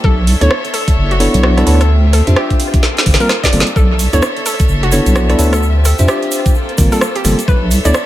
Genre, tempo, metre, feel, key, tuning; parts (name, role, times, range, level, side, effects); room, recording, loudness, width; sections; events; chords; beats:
UK garage, two-step garage; 129 BPM; 4/4; swing 60% on 16ths; B minor; A4 = 439 Hz
hollow square pluck; melody; 0.0-8.1 s; F#4 to D5; -21 LUFS; equal; chorus, tape echo
rich chamber violin section; sustained chords; 0.0-8.1 s; Bb3 to E5; -22 LUFS; left 1 dB; sidechain pumping
deep soft wobble bass; bass; 0.0-7.9 s; F#1 to F2; -12 LUFS; equal; chorus, tube saturation
electronic kick drum; drums; 0.0-7.6 s; -12 LUFS; equal; overdrive, small room reverb
garage drum kit; drums; 0.3-8.1 s; hi-hat, rim click, snare drum; -18 LUFS; right 1 dB; overdrive, small room reverb, analog delay
bell-like tine electric piano; stabs; 0.4-7.9 s; G3 to E5; -18 LUFS; equal; tape echo
tube shaker; percussion; 3.8-8.1 s; -25 LUFS; right 4 dB
light reverb, digital ambience; echo-heavy mix; -10 LUFS; side -14 dB against mid
0.0-8.1 A section
drum fill 2.8-3.8
0.0 Bm11; 1.9 Dm11; 2.8 Gm11; 3.8 Bm11; 5.6 Dm11; 6.5 Gm11; 7.5 Bm11
| 0.04 0.50 0.97 1.43 | 1.90 2.36 2.83 3.29 | 3.76 4.22 4.69 5.16 | 5.62 6.08 6.55 7.01 | 7.48 7.95